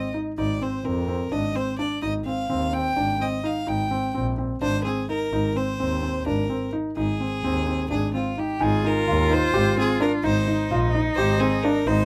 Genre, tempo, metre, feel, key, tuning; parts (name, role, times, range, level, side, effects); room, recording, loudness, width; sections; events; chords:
contemporary instrumental, chamber music in an uneven meter; 255 BPM (eighths); 7/8; straight; Ab lydian; A4 = 440 Hz
bright violin; melody; 0.0-12.1 s; F4 to G5; -30 LUFS; equal
felt-muted upright piano; arpeggios; 0.0-12.0 s; C4 to G4; -28 LUFS; equal
bright double bass; bass; 0.4-12.1 s; Ab1 to F2; -29 LUFS; equal
clear cello; second line; 8.6-12.1 s; Eb4 to F4; -30 LUFS; equal
small celesta; texture; 8.6-9.8 s; Ab5; -33 LUFS; equal
light reverb; close, detailed microphones; -24 LUFS; mono
0.0-8.6 A section; 8.6-12.1 A section
0.4 Bb7(no3)/Ab; 2.0 Abmaj7; 3.7 Eb6/Ab; 5.3 Ab; 10.2 Eb5/Ab